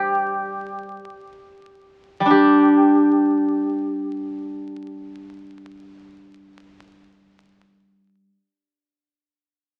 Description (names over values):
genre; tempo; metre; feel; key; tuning
chinese traditional, Chinese solo plucked strings; free time; none; none; G yu mode; A4 = 440 Hz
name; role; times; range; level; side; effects
steel-string zither; solo; 0.0-8.3 s; G3 to D5; -20 LUFS; equal; none
room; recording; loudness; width
moderate studio reverb, RT60 0.6 s; very old 78 rpm record, vinyl crackle; -18 LUFS; mono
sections
0.0-2.3 A section; 2.3-8.1 B section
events
slowing down 0.0-2.3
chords
none